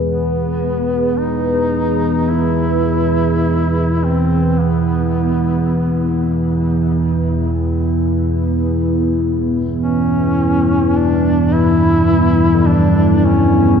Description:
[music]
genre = dark ambient drone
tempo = free time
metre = none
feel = none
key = unclear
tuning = A4 = 439 Hz
[part]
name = warm duduk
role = melody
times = 0.0-13.8 s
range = B3 to E4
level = -21 LUFS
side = left 1 dB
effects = diffuse ambient delay
[part]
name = deep dark ambient pad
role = sustained chords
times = 0.0-13.8 s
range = G2 to C#5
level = -18 LUFS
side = equal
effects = chorus, built-in reverb
[part]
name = carillon bells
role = arpeggios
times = 0.0-4.0, 12.5-13.8 s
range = D3 to D#5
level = -28 LUFS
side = left 3 dB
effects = none
[part]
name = analog drone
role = drone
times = 0.0-13.8 s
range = E2 to E3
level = -16 LUFS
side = equal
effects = chorus
[sound]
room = wet lush hall reverb, RT60 2.7 s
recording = dreamy mix soaked in reverb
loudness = -13 LUFS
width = side -7 dB against mid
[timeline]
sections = 0.0-13.8 A section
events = fade-in on duduk 0.0-13.8; filter sweep on synth drone 0.0-13.8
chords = 0.0 E; 9.2 G

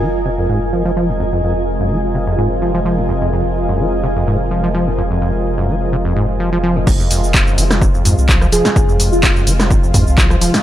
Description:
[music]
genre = acid house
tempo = 127 BPM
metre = 4/4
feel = swing 53% on 16ths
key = F minor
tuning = A4 = 440 Hz
[part]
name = lush unison pad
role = sustained chords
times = 0.0-10.6 s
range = C3 to F4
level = -22 LUFS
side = equal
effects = chorus, sidechain pumping
[part]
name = acid bass, saw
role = riff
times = 0.0-10.6 s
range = F2 to F3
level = -19 LUFS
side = equal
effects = overdrive, sidechain pumping, tape echo
[part]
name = warm sub bass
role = bass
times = 0.0-10.5 s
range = Eb1 to F2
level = -19 LUFS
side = equal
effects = sidechain pumping
[part]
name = granular cloud pad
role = texture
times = 0.0-6.9 s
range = F4 to Ab5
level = -22 LUFS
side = right 1 dB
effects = built-in reverb, sidechain pumping
[part]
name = electronic kick drum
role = drums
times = 6.9-10.3 s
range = none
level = -14 LUFS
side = equal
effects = none
[part]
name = punchy analog drum machine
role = drums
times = 6.9-10.6 s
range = cabasa, crash cymbal, handclaps, hi-hat, rim click, snare drum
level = -17 LUFS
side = equal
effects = none
[part]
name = airy dreamy lead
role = melody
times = 8.5-9.3 s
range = F4 to Ab4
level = -19 LUFS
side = right 1 dB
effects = chorus, cassette tape, analog delay
[sound]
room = light reverb, digital ambience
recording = none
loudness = -13 LUFS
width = side -12 dB against mid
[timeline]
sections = 0.0-6.9 A section; 6.9-10.6 B section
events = filter sweep on acid bass 0.0-6.9; filter sweep on analog synth pad 0.0-6.9; drop 6.9-10.6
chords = 0.0 Fm

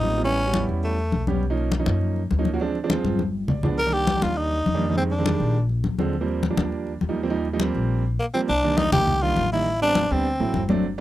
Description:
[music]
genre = Afro-Cuban jazz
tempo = 204 BPM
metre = 4/4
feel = straight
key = unclear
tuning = A4 = 441 Hz
[part]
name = growling tenor saxophone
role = melody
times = 0.0-1.3, 3.8-5.7, 8.2-10.7 s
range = A3 to Bb4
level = -23 LUFS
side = equal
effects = none
[part]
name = warm grand piano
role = accompaniment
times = 0.0-11.0 s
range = D3 to D5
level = -26 LUFS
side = right 5 dB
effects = none
[part]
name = upright bass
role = bass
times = 0.0-11.0 s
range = G1 to F#2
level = -26 LUFS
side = left 1 dB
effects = none
[part]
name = congas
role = percussion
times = 0.2-11.0 s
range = none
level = -26 LUFS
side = left 3 dB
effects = none
[sound]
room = little or no reverb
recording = dry, close 1970s-style studio recording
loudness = -20 LUFS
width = side -14 dB against mid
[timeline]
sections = 0.0-8.5 A section; 8.5-11.0 B section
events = drum fill 3.0-3.8; grand piano fill 3.3-3.8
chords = 0.2 A9; 1.4 Bmaj9#11; 2.6 Dm7b5; 3.2 G7b9; 3.8 Cm9; 5.0 Fm7; 5.5 Bb7; 6.1 Eb6; 8.5 Cm9; 9.7 Am11; 10.3 D7

